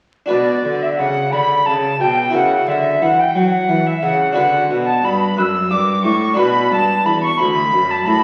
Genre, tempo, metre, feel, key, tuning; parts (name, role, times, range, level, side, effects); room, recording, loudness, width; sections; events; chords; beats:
classical, baroque-style sonata movement with continuo; 59 BPM (dotted quarters); 6/8; rubato; B minor; A4 = 439 Hz
bright alto recorder; melody; 0.3-8.2 s; D5 to F#6; -23 LUFS; equal
warm violin; second line; 0.3-8.2 s; D5 to E6; -20 LUFS; equal
harpsichord; accompaniment; 0.3-8.2 s; D2 to B4; -21 LUFS; equal
rich cello; bass; 0.3-8.2 s; D2 to F#3; -26 LUFS; equal
wet recital hall reverb, RT60 1.4 s; very old 78 rpm record, vinyl crackle; -16 LUFS; mono
0.3-8.2 A section
0.3 Bm; 2.3 F#7/C#; 4.4 Bm
| 0.30 1.33 | 2.35 3.36 | 4.37 5.38 | 6.39 7.40